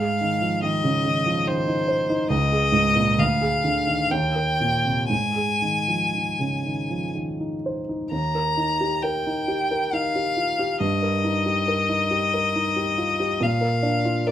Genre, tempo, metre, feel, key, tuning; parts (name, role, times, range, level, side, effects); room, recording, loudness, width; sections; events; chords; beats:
classical, romantic duo for violin and grand piano; 58-72 BPM; 3/4; rubato; Ab major, Eb major from 8.1 s; A4 = 440 Hz
rich violin; melody; 0.0-14.3 s; C5 to Bb5; -23 LUFS; left 2 dB
warm grand piano; accompaniment; 0.0-14.3 s; Db2 to C5; -23 LUFS; right 1 dB
light reverb; -20 LUFS; side -11 dB against mid
0.0-8.1 A section; 8.1-14.3 B section
0.0 Fm7/Ab; 2.3 Db5; 3.2 Ddim; 4.1 Eb; 5.1 Ab; 8.1 Eb; 10.8 Eb/G; 13.4 Bb
0.64 1.48 | 2.32 3.20 4.11 | 5.09 6.13 7.14 | 8.12 9.04 9.93 | 10.82 11.69 12.56 | 13.42 14.28